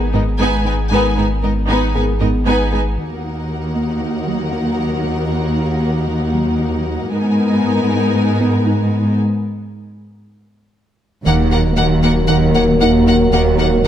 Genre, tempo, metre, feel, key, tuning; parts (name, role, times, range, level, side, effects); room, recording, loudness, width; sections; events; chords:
cinematic, hybrid orchestral and electronic film score; 116 BPM; 4/4; straight; Eb minor; A4 = 441 Hz
dark French horn section; sustained chords; 0.0-13.9 s; Bb3 to Bb4; -22 LUFS; left 3 dB
harp-like synth pluck; arpeggios; 0.0-13.9 s; Eb3 to Ab4; -23 LUFS; right 2 dB; chorus, ping-pong delay
pure sine sub bass; bass; 0.0-3.0, 11.3-13.9 s; Eb1 to Ab1; -20 LUFS; equal
warm symphonic violin section; second line; 0.1-13.9 s; Bb4 to Ab5; -25 LUFS; left 2 dB
warm symphonic viola section; accompaniment; 0.1-13.9 s; Bb3 to Eb4; -24 LUFS; right 1 dB
warm symphonic cello section; bass; 0.1-13.9 s; Eb2 to Ab2; -18 LUFS; right 1 dB
clear symphonic violin section; melody; 11.3-13.9 s; Gb5; -21 LUFS; left 3 dB
warm trombone section; sustained chords; 11.3-13.9 s; Eb3 to Gb3; -21 LUFS; right 2 dB
rich studio double bass section; bass; 11.3-13.8 s; Eb2; -20 LUFS; right 3 dB
moderate scoring stage reverb, RT60 1.8 s; -14 LUFS; side -10 dB against mid
0.0-3.0 A section; 3.0-11.3 B section; 11.3-13.9 C section
break 9.2-11.3
0.0 Abm; 3.0 Ebm; 7.1 Abmadd9; 11.3 Ebm